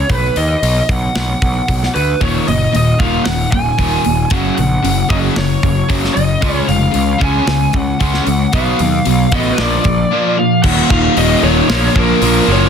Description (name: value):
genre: hard rock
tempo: 114 BPM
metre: 4/4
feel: straight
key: Eb minor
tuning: A4 = 441 Hz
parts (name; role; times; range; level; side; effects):
- lead guitar through a small cranked amp; melody; 0.0-12.7 s; Bb4 to Ab5; -18 LUFS; equal; overdrive, digital delay
- fuzz picked electric bass; bass; 0.0-12.7 s; Eb1 to D#2; -17 LUFS; equal; overdrive
- tight metal drum kit; drums; 0.1-12.3 s; crash cymbal, hi-hat, kick drum, snare drum; -19 LUFS; equal; soft clipping on kick
- cranked stack guitar; riff; 2.2-12.7 s; Eb2 to Db4; -17 LUFS; left 10 dB; overdrive
- overdriven semi-hollow guitar; riff; 2.2-12.7 s; Eb2 to Db4; -18 LUFS; right 13 dB; none
room: light reverb, small room ambience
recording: dense, heavily limited modern master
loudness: -11 LUFS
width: side -7 dB against mid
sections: 0.0-10.6 A section; 10.6-12.7 B section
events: none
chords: 0.1 B; 2.2 Eb5; 4.3 Gb5; 6.4 Db; 8.5 B; 9.6 Bb; 10.6 Eb5; 11.7 Bb5